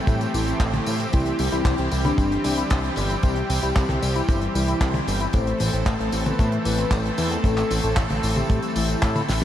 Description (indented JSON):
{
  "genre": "italo disco",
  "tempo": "114 BPM",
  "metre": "4/4",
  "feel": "straight",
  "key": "A minor",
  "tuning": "A4 = 441 Hz",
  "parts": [
    { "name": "soft octave-layered synth lead", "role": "melody", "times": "0.0-9.0 s", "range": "D4 to C5", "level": "-29 LUFS", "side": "left 1 dB", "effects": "chorus, phaser, cassette tape, ping-pong delay" },
    { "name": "lush unison pad", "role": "sustained chords", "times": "0.0-9.4 s", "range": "E3 to A4", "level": "-27 LUFS", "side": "equal", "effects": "chorus" },
    { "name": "electric guitar with an envelope filter", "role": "arpeggios", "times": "0.1-9.4 s", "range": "A2 to A4", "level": "-31 LUFS", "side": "left 4 dB", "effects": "wide subtle chorus, diffuse ambient delay" },
    { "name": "fat analog bass", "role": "bass", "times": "0.1-9.4 s", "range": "G1 to A2", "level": "-25 LUFS", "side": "equal", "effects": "none" },
    { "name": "damped 70s drum kit", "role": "drums", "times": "0.1-9.4 s", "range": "handclaps, hi-hat, snare drum, tambourine, toms", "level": "-29 LUFS", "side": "left 1 dB", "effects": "small room ambience" },
    { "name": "kick drum", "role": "drums", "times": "0.1-9.1 s", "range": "none", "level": "-21 LUFS", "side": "equal", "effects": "small room ambience" }
  ],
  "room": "moderate lush hall reverb, RT60 2.8 s",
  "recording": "dreamy mix soaked in reverb, vinyl crackle",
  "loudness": "-20 LUFS",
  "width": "side -11 dB against mid",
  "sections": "0.0-9.4 A section",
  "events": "drum fill 9.3",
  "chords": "0.0 Am; 1.1 C; 5.3 Am"
}